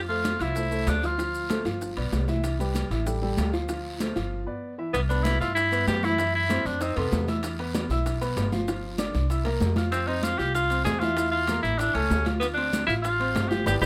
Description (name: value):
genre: Afro-Cuban jazz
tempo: 192 BPM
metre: 4/4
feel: straight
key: C major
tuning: A4 = 440 Hz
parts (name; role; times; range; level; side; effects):
- warm grand piano; accompaniment; 0.0-13.9 s; C3 to F6; -33 LUFS; equal; none
- upright bass; bass; 0.0-13.9 s; G1 to G2; -31 LUFS; equal; none
- clear tenor saxophone; melody; 0.1-1.7, 4.9-7.3, 9.9-13.9 s; B3 to Ab4; -28 LUFS; equal; none
- congas; percussion; 0.1-13.9 s; none; -36 LUFS; equal; none
- timbales; percussion; 0.1-13.9 s; none; -41 LUFS; equal; none
- bongos; percussion; 0.2-13.9 s; none; -40 LUFS; equal; none
- guiro; percussion; 0.2-13.9 s; none; -46 LUFS; equal; none
- maracas; percussion; 0.3-13.9 s; none; -47 LUFS; equal; none
room: light reverb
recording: none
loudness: -26 LUFS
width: mono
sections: 0.0-4.9 A section; 4.9-13.9 B section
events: break 4.3-4.9; drum fill 9.1-9.9, 13.7; band accent 13.7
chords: 0.0 F6; 1.2 Dm7; 1.8 G7; 2.4 Cmaj7; 3.1 Dmadd11/A; 3.7 Dm7; 4.3 G6; 4.9 Cmaj7; 6.2 D9; 6.8 F7#11; 7.4 Em; 8.7 G5; 9.3 C7; 9.9 F5; 11.2 Fmaj7; 11.8 A; 12.4 Dm7